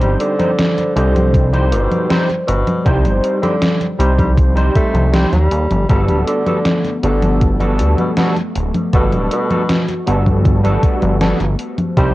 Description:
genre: vaporwave.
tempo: 79 BPM.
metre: 4/4.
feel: straight.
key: G major.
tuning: A4 = 439 Hz.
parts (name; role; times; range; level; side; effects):
breathy tenor saxophone; melody; 0.0-12.1 s; B2 to A3; -21 LUFS; equal; tape echo.
overdriven tine electric piano; accompaniment; 0.0-12.1 s; G3 to Eb5; -20 LUFS; equal; ensemble chorus.
warbly tape-like pad; sustained chords; 0.0-12.1 s; G3 to C5; -26 LUFS; left 1 dB; none.
chorused synth bass; bass; 0.0-12.1 s; D1 to Eb2; -15 LUFS; equal; none.
gated 80s digital drum machine; drums; 0.0-12.1 s; congas, hi-hat, snare drum; -19 LUFS; equal; gated reverb, gated reverb snare, overdrive.
electronic kick drum; drums; 1.3-12.1 s; none; -14 LUFS; equal; overdrive.
room: little or no reverb.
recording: dry, gritty hardware recording, cassette tape.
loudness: -13 LUFS.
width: side -17 dB against mid.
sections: 0.0-12.1 A section.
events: none.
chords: 0.0 Cm; 5.9 Gmaj9; 11.6 Cm.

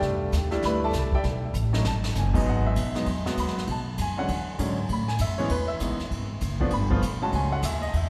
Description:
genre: jazz, small-group swing and bop.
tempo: 197 BPM.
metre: 4/4.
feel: swing 62% on 8ths.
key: E major.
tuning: A4 = 440 Hz.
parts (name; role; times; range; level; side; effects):
clear baby grand piano; accompaniment; 0.0-8.1 s; E2 to B5; -30 LUFS; equal; none.
upright bass; bass; 0.0-8.1 s; F#1 to A2; -30 LUFS; equal; none.
jazz brush drum kit; drums; 0.0-8.0 s; brushed snare drum, crash cymbal, hi-hat, kick drum, ride cymbal, snare drum; -35 LUFS; equal; none.
room: wet church reverb, RT60 3.4 s.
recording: recorded in a church or concert hall, lossy compression artefacts.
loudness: -26 LUFS.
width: mono.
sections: 0.0-2.5 A section; 2.5-8.1 A section.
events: drum fill 1.5-2.1.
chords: 0.0 C69; 1.2 B7; 2.5 Emaj7; 3.7 Bm9; 4.3 E13; 4.9 Amaj9; 6.1 G#m7; 6.7 G9; 7.3 F#m9.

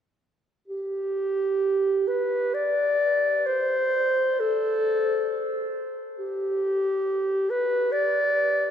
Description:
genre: classical, free, expressive piece for unaccompanied clarinet.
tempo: free time.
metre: none.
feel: none.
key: G major.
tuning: A4 = 436 Hz.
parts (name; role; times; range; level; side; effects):
mellow clarinet; solo; 0.7-8.7 s; G4 to D5; -22 LUFS; equal; none.
room: wet cathedral reverb, RT60 6.7 s.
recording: in a vast, echoing space.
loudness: -22 LUFS.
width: side -9 dB against mid.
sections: 0.7-8.7 A section.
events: none.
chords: none.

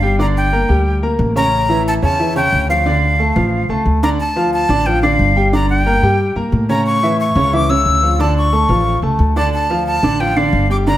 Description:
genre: latin.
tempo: 180 BPM.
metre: 4/4.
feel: straight.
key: D harmonic minor.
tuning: A4 = 440 Hz.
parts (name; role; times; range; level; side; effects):
breathy bright jazz flute; melody; 0.0-11.0 s; F5 to E6; -17 LUFS; left 1 dB; none.
clear grand piano; accompaniment; 0.0-11.0 s; C#3 to Bb5; -17 LUFS; equal; none.
upright bass; bass; 0.0-11.0 s; G1 to A2; -17 LUFS; equal; none.
room: moderate large studio reverb, RT60 1.2 s.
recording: none.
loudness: -12 LUFS.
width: side -13 dB against mid.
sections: 0.0-4.2 A section; 4.2-11.0 A section.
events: none.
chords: 0.2 Gm; 1.5 A7; 2.9 Dm; 5.5 Gm; 6.9 A; 8.2 Dm.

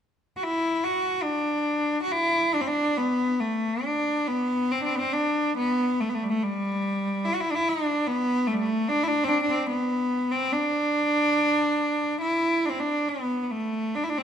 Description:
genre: celtic folk.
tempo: 71 BPM.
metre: 3/4.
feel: rubato.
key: D mixolydian.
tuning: A4 = 441 Hz.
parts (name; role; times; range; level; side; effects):
bright cello; solo; 0.4-14.2 s; G3 to F#4; -23 LUFS; equal; none.
room: moderate concert hall reverb, RT60 1.8 s.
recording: minimal, uncompressed stereo recording.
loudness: -23 LUFS.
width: side -8 dB against mid.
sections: 0.4-3.0 A section; 3.0-13.1 B section; 13.1-14.2 B section.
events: none.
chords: none.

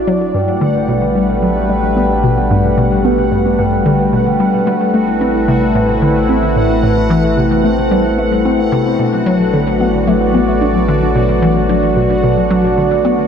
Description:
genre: ambient, sequencer-driven space music.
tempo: 111 BPM.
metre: 4/4.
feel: straight.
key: unclear.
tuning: A4 = 438 Hz.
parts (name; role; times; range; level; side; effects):
sweeping resonant pad; sustained chords; 0.0-13.3 s; G3 to D5; -15 LUFS; equal; chorus.
warm sub bass; bass; 0.0-13.3 s; A1; -22 LUFS; equal; none.
bubbling stepped-filter texture; texture; 0.0-13.3 s; D4 to F#5; -25 LUFS; equal; chorus, built-in reverb.
hollow square pluck; riff; 0.1-13.2 s; G2 to D4; -16 LUFS; equal; chorus, tape echo.
concert harp; arpeggios; 0.3-13.3 s; F#3 to B4; -19 LUFS; left 2 dB; auto-pan, tape echo.
room: wet lush hall reverb, RT60 2.7 s.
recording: dreamy mix soaked in reverb.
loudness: -11 LUFS.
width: side -7 dB against mid.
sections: 0.0-13.3 A section.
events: filter sweep on synth arpeggio sound 0.0-13.3.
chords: 0.3 Gadd9/A; 4.7 Amadd9; 9.0 Bm/A.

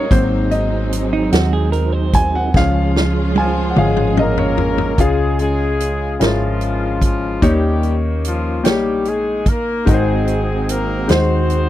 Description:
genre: slow gospel.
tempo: 49 BPM (dotted quarters).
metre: 6/8.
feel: straight.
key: Db major.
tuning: A4 = 441 Hz.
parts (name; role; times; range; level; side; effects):
clear grand piano; accompaniment; 0.0-11.7 s; Ab2 to Ab5; -20 LUFS; left 2 dB; none.
percussive tonewheel organ; sustained chords; 0.0-5.0, 9.9-11.7 s; Eb3 to Bb4; -23 LUFS; right 5 dB; fast rotary speaker, chorus vibrato.
rich studio string section; sustained chords; 0.0-5.0 s; F3 to F4; -26 LUFS; left 1 dB; none.
hollow-body short-scale fingered electric bass; bass; 0.0-11.7 s; Ab1 to Eb2; -19 LUFS; equal; none.
swinging big-band drum kit; drums; 0.1-11.7 s; hi-hat, kick drum, snare drum, toms; -18 LUFS; equal; none.
clean electric guitar; second line; 1.1-2.5 s; Eb4 to C5; -22 LUFS; right 7 dB; none.
warm horn section; melody; 3.4-11.7 s; F3 to C5; -20 LUFS; left 2 dB; none.
room: little or no reverb.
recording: dry, close 1970s-style studio recording.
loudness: -14 LUFS.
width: side -13 dB against mid.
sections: 0.0-5.0 A section; 5.0-11.7 B section.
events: grand piano solo 0.0-5.0; drum fill 2.5-5.0.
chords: 0.1 Ab7; 2.5 Db; 7.4 Eb7; 9.9 Ab7.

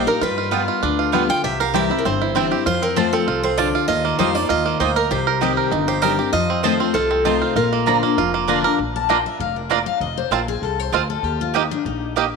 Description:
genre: bluegrass.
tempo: 196 BPM.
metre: 4/4.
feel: straight.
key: Bb major.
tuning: A4 = 440 Hz.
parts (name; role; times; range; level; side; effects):
picked steel-string acoustic guitar; melody; 0.0-8.4 s; A4 to G5; -23 LUFS; equal; slapback echo.
picked steel-string acoustic guitar; accompaniment; 0.0-12.1 s; F2 to A5; -22 LUFS; left 11 dB; none.
bluegrass banjo; arpeggios; 0.0-12.2 s; F3 to Bb4; -22 LUFS; right 10 dB; none.
upright bass; bass; 0.0-12.3 s; F1 to G2; -28 LUFS; equal; none.
mandolin; stabs; 0.5-12.3 s; Bb3 to Bb5; -26 LUFS; right 11 dB; none.
room: moderate plate reverb, RT60 3.1 s.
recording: 1960s-style stereo with parts hard left and right.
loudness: -17 LUFS.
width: side -4 dB against mid.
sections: 0.0-8.8 A section; 8.8-12.4 B section.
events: steel-string acoustic guitar solo 8.8-12.4.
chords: 0.2 G7; 1.4 C; 2.7 F; 3.9 Ebadd9; 5.1 Cm; 6.3 F7; 7.6 Bb; 10.0 F; 11.2 Eb.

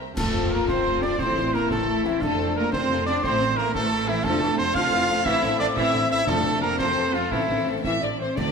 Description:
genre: cinematic, heroic adventure film score.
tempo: 117 BPM (dotted quarters).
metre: 6/8.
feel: straight.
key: F major.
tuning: A4 = 444 Hz.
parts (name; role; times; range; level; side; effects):
warm symphonic violin section; melody; 0.0-8.5 s; E4 to Bb5; -33 LUFS; left 6 dB; none.
rich symphonic violin section; second line; 0.0-8.5 s; C4 to E5; -32 LUFS; left 5 dB; none.
rich studio viola section; accompaniment; 0.0-8.3 s; D3 to C5; -33 LUFS; right 1 dB; none.
mellow hollow silver concert flute; second line; 0.2-8.5 s; C5 to F6; -30 LUFS; left 1 dB; none.
dark French horn section; sustained chords; 0.2-8.5 s; A3 to F4; -28 LUFS; left 4 dB; none.
clear trumpet; stabs; 0.2-8.5 s; E4 to F5; -26 LUFS; right 2 dB; none.
rich symphonic cello section; bass; 0.2-8.5 s; D3 to F4; -30 LUFS; right 4 dB; none.
rich symphonic double bass section; bass; 0.2-8.5 s; F1 to D2; -32 LUFS; right 3 dB; none.
concert snare drum, clash cymbals and concert bass drum; drums; 0.2-8.5 s; none; -34 LUFS; right 1 dB; none.
clash cymbals and concert bass drum; percussion; 0.2-0.8 s; none; -34 LUFS; equal; none.
timpani; percussion; 4.2-8.5 s; F2 to D3; -34 LUFS; left 1 dB; none.
room: wet scoring stage reverb, RT60 1.9 s.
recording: none.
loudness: -20 LUFS.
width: side -5 dB against mid.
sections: 0.2-8.4 A section.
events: band accent 0.2-0.5.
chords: 0.2 F; 1.2 Am; 2.2 F; 3.2 Am; 4.3 F; 5.3 Am; 6.3 F; 7.3 Am.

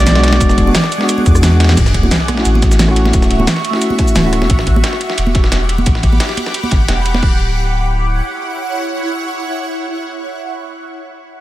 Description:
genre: liquid drum and bass.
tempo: 176 BPM.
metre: 4/4.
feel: straight.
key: D major.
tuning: A4 = 440 Hz.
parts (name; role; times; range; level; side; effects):
mellow flugelhorn; melody; 0.0-1.4 s; D5; -23 LUFS; right 2 dB; tape echo.
mellow tine electric piano; accompaniment; 0.0-4.5 s; G#3 to F#4; -17 LUFS; left 1 dB; vintage 12-bit sampler grit, tape echo.
shimmering ambient pad; sustained chords; 0.0-10.7 s; E4 to D6; -21 LUFS; right 1 dB; chorus, built-in reverb, phaser.
saturated sub bass; bass; 0.0-8.2 s; D1 to E2; -14 LUFS; equal; none.
dusty soul sampler-style drum kit; drums; 0.1-7.2 s; ride cymbal, snare drum; -21 LUFS; equal; high-pass filter on snare, high-pass filter on cymbals, high-pass filter on room.
pop drum kit; drums; 0.1-7.3 s; crash cymbal, hi-hat, rim click, shaker, snare drum; -18 LUFS; equal; none.
congas; percussion; 0.1-7.2 s; none; -22 LUFS; right 3 dB; none.
electronic kick drum; drums; 0.4-7.3 s; none; -14 LUFS; equal; none.
sub drop; sound effects; 1.8-3.1 s; none; -21 LUFS; equal; none.
room: little or no reverb.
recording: none.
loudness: -11 LUFS.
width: side -15 dB against mid.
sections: 0.0-1.8 A section; 1.8-7.2 B section; 7.2-10.0 C section.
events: drop 0.0-1.8; drum fill 1.4-1.8; impact 1.8-3.1.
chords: 0.0 E9; 1.8 Dmaj9; 4.5 A13sus4; 7.2 Dmaj9.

